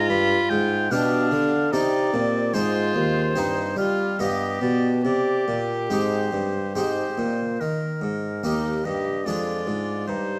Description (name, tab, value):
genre	classical, baroque-style sonata movement with continuo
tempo	73 BPM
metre	3/4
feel	rubato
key	C minor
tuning	A4 = 440 Hz
part	clear oboe	melody	0.0-10.4 s	Bb4 to B5	-30 LUFS	equal	none
part	warm violin	second line	0.0-10.4 s	C4 to G4	-30 LUFS	equal	none
part	harpsichord	accompaniment	0.0-10.4 s	Eb2 to C5	-28 LUFS	equal	none
part	dark bassoon	bass	0.0-10.4 s	Eb2 to G3	-29 LUFS	equal	none
room	moderate recital hall reverb, RT60 1.5 s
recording	close, detailed microphones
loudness	-23 LUFS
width	mono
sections	0.0-7.6 A section; 7.6-10.4 A section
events	none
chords	0.1 G7; 1.7 Cm; 2.5 Ab; 3.4 Cm/G; 4.2 G7; 5.0 Cm; 7.6 Eb; 9.3 Ddim/F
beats	| 0.09 0.91 1.72 | 2.54 3.36 4.20 | 5.05 5.90 6.75 | 7.61 8.44 9.27 | 10.09